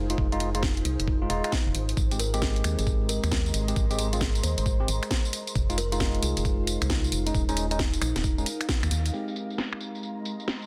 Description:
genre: UK garage, two-step garage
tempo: 134 BPM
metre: 4/4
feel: swing 64% on 16ths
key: Ab major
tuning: A4 = 443 Hz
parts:
  - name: tine electric piano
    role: stabs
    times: 0.0-10.7 s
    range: Ab3 to G4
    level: -35 LUFS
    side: equal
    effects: low-pass filter
  - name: organ-like FM bass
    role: bass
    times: 0.0-9.1 s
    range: Eb1 to Eb2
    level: -31 LUFS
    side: equal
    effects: none
  - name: ethereal airy pad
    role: texture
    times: 0.0-10.7 s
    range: Ab3 to C6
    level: -42 LUFS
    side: equal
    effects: ensemble chorus, built-in reverb, sidechain pumping
  - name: garage drum kit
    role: drums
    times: 0.1-10.7 s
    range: finger snaps, hi-hat, snare drum, tambourine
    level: -34 LUFS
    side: equal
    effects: low-pass filter on cymbals, studio reverb, low-pass filter on hats, low-pass filter on snare, low-pass filter on perc
  - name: electronic kick drum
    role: drums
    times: 0.2-8.8 s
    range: none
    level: -30 LUFS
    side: equal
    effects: overdrive, studio reverb
  - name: kalimba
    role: melody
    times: 0.3-8.2 s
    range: Eb4 to C5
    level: -38 LUFS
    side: equal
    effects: vintage 12-bit sampler grit, digital delay
room: digital ambience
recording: dense, heavily limited modern master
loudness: -27 LUFS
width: mono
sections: 0.0-9.1 A section; 9.1-10.7 B section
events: band accent 8.7; filter sweep on drum 9.1-10.7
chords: 0.0 Fm7; 2.0 Abmaj7; 5.3 Fm7; 7.3 Eb7sus4; 9.1 Abmaj7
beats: | 0.18 0.63 1.08 1.52 | 1.97 2.42 2.87 3.31 | 3.76 4.21 4.66 5.11 | 5.55 6.00 6.45 6.90 | 7.34 7.79 8.24 8.69 | 9.14 9.58 10.03 10.48

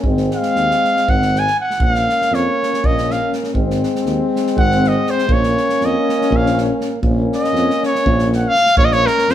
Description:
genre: balkan folk, Balkan brass band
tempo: 241 BPM (eighths)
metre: 7/8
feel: straight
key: Bb minor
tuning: A4 = 439 Hz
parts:
  - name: warm euphonium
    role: accompaniment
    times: 0.0-9.3 s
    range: Ab3 to Bb3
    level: -24 LUFS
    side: right 5 dB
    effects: none
  - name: warm trombone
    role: accompaniment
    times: 0.0-9.3 s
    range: C4 to Db4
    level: -22 LUFS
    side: left 6 dB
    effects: none
  - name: mellow tuba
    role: bass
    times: 0.0-9.3 s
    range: Ab1 to F2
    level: -20 LUFS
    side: equal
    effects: none
  - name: natural country drum kit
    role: percussion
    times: 0.0-9.3 s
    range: kick drum, snare drum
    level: -22 LUFS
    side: equal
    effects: none
  - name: warm trumpet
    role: melody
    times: 0.4-9.3 s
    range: Bb4 to Ab5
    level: -17 LUFS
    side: equal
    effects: none
room: moderate stone room reverb, RT60 1.3 s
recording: band playing live in one room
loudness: -14 LUFS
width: side -11 dB against mid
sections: 0.0-8.8 A section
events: trumpet solo 0.0-8.8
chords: 0.1 Ab; 1.8 Bbm; 3.5 Ab; 5.3 Bbm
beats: | 0.06 0.30 0.56 0.81 1.05 1.30 1.55 | 1.80 2.05 2.30 2.55 2.80 3.05 3.30 | 3.55 3.80 4.05 4.29 4.54 4.79 5.04 | 5.29 5.54 5.79 6.04 6.29 6.54 6.79 | 7.03 7.28 7.53 7.78 8.03 8.28 8.53 | 8.77 9.02 9.27

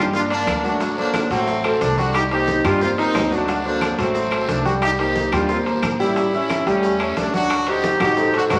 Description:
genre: latin, salsa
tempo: 179 BPM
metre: 4/4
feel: straight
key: unclear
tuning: A4 = 440 Hz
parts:
  - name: brilliant horn section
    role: melody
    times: 0.0-8.6 s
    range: A3 to G4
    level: -23 LUFS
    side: equal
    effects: none
  - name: clear concert grand piano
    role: accompaniment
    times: 0.0-8.6 s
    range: F#3 to G5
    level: -24 LUFS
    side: equal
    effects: none
  - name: upright bass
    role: bass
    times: 0.0-8.6 s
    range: G1 to G2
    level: -32 LUFS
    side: equal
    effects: none
  - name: bongos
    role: percussion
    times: 0.1-8.6 s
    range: none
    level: -35 LUFS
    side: equal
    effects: none
  - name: congas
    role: percussion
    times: 0.1-8.6 s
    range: none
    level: -34 LUFS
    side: equal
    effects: none
  - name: guiro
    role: percussion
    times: 0.1-8.6 s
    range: none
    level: -41 LUFS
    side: equal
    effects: none
  - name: maracas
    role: percussion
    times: 0.1-8.6 s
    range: none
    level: -44 LUFS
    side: equal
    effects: none
  - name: timbales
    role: percussion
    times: 0.3-8.6 s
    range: none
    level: -32 LUFS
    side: equal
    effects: none
  - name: claves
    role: percussion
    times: 0.5-8.6 s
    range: none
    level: -36 LUFS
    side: equal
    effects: none
room: wet large studio reverb, RT60 1.4 s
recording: vinyl crackle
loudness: -20 LUFS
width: mono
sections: 0.0-8.6 A section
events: none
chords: 0.0 Gm; 0.8 D7; 2.1 Cm7; 3.5 D7; 4.8 Cm7; 6.2 A7; 7.5 D7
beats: 0.14 0.47 | 0.81 1.14 1.48 1.81 | 2.15 2.48 2.81 3.15 | 3.48 3.82 4.15 4.49 | 4.82 5.16 5.49 5.83 | 6.16 6.49 6.83 7.16 | 7.50 7.83 8.17 8.50

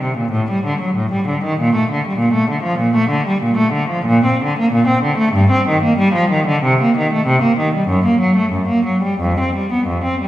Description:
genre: classical, baroque-style suite movement for unaccompanied cello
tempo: 95 BPM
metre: 4/4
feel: rubato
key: G minor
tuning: A4 = 440 Hz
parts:
  - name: rich cello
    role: solo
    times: 0.0-10.3 s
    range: F2 to C4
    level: -14 LUFS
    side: equal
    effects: none
room: wet recital hall reverb, RT60 1.5 s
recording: heard from further back in the room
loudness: -14 LUFS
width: side -14 dB against mid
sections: 0.0-10.3 A section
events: none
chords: none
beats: 0.33 0.95 | 1.58 2.20 2.82 3.44 | 4.09 4.74 5.36 5.98 | 6.62 7.26 7.90 8.54 | 9.22 9.88

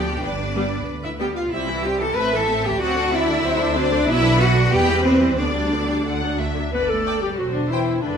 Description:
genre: quick classical-period movement for symphony orchestra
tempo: 93 BPM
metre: 2/4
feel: rubato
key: G major from 4.1 s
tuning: A4 = 440 Hz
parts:
  - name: rich studio violin section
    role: melody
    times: 0.0-8.2 s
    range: B4 to F#5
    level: -28 LUFS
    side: left 5 dB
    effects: none
  - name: rich studio violin section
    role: second line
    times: 0.0-7.9 s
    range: C5 to B5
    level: -27 LUFS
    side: left 1 dB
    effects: none
  - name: rich symphonic viola section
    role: accompaniment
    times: 0.0-8.2 s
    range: D3 to B4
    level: -25 LUFS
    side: equal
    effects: none
  - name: clear studio cello section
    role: bass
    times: 0.0-8.2 s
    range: D3 to B4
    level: -22 LUFS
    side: equal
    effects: none
  - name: rich studio double bass section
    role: bass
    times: 0.0-8.2 s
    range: E1 to E2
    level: -25 LUFS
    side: right 2 dB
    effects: none
  - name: warm clarinet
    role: second line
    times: 6.7-8.2 s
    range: D4 to B4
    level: -24 LUFS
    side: left 4 dB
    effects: none
room: wet recital hall reverb, RT60 1.4 s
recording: none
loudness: -18 LUFS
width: side -7 dB against mid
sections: 0.0-6.7 A section; 6.7-8.2 B section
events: none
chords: 0.2 G; 1.5 C; 2.2 Am; 2.8 D7; 4.1 Bm; 4.7 Em; 5.4 G/D; 6.1 D; 6.7 G; 7.4 C/E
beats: | 0.23 0.88 | 1.52 2.17 | 2.81 3.45 | 4.08 4.72 | 5.39 6.07 | 6.74 7.39 | 8.04

